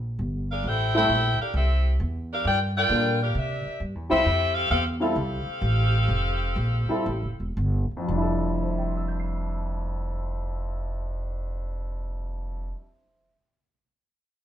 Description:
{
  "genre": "jazz, big band swing",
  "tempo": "113-133 BPM",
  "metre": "4/4",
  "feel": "swing 66% on 8ths",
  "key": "F major",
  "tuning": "A4 = 438 Hz",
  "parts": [
    { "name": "upright bass", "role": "bass", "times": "0.0-12.7 s", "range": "E1 to C3", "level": "-26 LUFS", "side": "equal", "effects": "none" },
    { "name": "bright saxophone section", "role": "melody", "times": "0.5-7.5 s", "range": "C4 to G5", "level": "-25 LUFS", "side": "left 1 dB", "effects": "none" },
    { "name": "warm concert grand piano", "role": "accompaniment", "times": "0.9-13.8 s", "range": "F2 to C7", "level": "-28 LUFS", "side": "left 1 dB", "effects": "none" }
  ],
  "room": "moderate studio reverb, RT60 0.8 s",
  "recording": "band playing live in one room",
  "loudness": "-23 LUFS",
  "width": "side -10 dB against mid",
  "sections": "0.0-8.1 A section; 8.1-12.3 B section",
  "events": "slowing down 4.2-8.1",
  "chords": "0.0 N.C.; 0.6 Am7; 2.4 Gm7; 3.3 C9; 4.2 Fmaj9; 8.1 Fmaj13",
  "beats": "0.19 | 0.64 1.09 1.54 1.99 | 2.44 2.89 3.35 3.80 | 4.25 4.70 5.15 5.62 | 6.09 6.57 7.06 7.56 | 8.08 8.62 9.14 9.68 | 10.21 10.74 11.27 11.80"
}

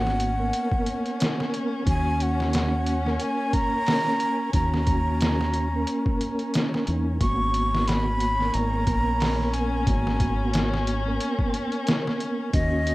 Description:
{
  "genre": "trip hop",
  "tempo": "90 BPM",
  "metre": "4/4",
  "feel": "swing 56% on 16ths",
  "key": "unclear",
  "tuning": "A4 = 440 Hz",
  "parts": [
    { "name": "breathy mellow silver concert flute", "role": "melody", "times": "0.0-12.9 s", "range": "Eb5 to Db6", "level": "-28 LUFS", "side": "equal", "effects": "vintage 12-bit sampler grit, tape echo" },
    { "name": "mellow tonewheel organ", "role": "accompaniment", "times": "0.0-12.9 s", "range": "Bb3 to Bb4", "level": "-28 LUFS", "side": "right 1 dB", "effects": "chorus vibrato, fast rotary speaker, tremolo, tape echo" },
    { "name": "dark chamber string section", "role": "sustained chords", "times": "0.0-12.9 s", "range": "Db4", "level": "-33 LUFS", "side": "left 2 dB", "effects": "none" },
    { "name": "deep dub fingered electric bass", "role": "bass", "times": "0.0-12.9 s", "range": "Ab1 to Fb2", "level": "-26 LUFS", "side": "equal", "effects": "none" },
    { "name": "trip hop sampler-style drum kit", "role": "drums", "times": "0.1-12.9 s", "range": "hi-hat, kick drum, snare drum", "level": "-26 LUFS", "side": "equal", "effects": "overdrive, small room reverb" }
  ],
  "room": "little or no reverb",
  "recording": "rough home demo mix",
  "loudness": "-22 LUFS",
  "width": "side -19 dB against mid",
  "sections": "0.0-12.9 A section",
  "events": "none",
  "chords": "0.0 Abm7; 1.9 Ebm7; 7.2 Abm7",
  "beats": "0.54 1.20 | 1.87 2.54 3.20 3.87 | 4.54 5.20 5.87 6.54 | 7.20 7.87 8.54 9.20 | 9.87 10.54 11.20 11.87 | 12.54"
}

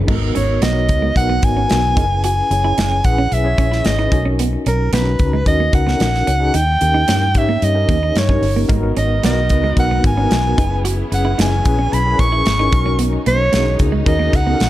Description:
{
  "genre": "polished 1980s jazz-funk pop",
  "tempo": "112 BPM",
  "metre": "4/4",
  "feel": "straight",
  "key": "B major",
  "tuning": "A4 = 440 Hz",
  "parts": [
    { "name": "mellow tine electric piano", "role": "accompaniment", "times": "0.0-14.7 s", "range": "B3 to A#5", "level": "-22 LUFS", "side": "left 2 dB", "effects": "medium tremolo, lush chorus" },
    { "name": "clean electric guitar", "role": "riff", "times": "0.0-14.5 s", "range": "G#3 to F#4", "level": "-25 LUFS", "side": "right 5 dB", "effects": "lush chorus" },
    { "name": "vintage muted fingered electric bass", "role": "bass", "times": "0.0-14.7 s", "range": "F#1 to G#2", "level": "-18 LUFS", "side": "equal", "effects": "none" },
    { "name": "modern studio drum kit", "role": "drums", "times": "0.1-14.7 s", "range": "crash cymbal, hi-hat, kick drum, snare drum", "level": "-19 LUFS", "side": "equal", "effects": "none" },
    { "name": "breathy soprano saxophone", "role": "melody", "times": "0.4-14.7 s", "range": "A#4 to C#6", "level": "-19 LUFS", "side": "right 1 dB", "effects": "none" },
    { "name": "rich studio string section", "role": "sustained chords", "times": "8.7-14.7 s", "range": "F#3 to A#4", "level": "-31 LUFS", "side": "equal", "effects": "none" }
  ],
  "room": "light reverb, small room ambience",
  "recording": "dark, warm production",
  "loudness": "-13 LUFS",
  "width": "side -14 dB against mid",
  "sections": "0.1-14.7 A section",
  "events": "none",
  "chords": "0.1 G#m7; 2.0 F#9sus4; 4.1 Bmaj9; 6.5 D#7; 8.7 G#m7; 10.6 F#9sus4; 12.7 Bmaj9",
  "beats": "| 0.09 0.62 1.16 1.70 | 2.24 2.77 3.31 3.85 | 4.39 4.93 5.46 6.00 | 6.54 7.08 7.62 8.15 | 8.69 9.23 9.77 10.31 | 10.84 11.38 11.92 12.46 | 12.99 13.53 14.07 14.61"
}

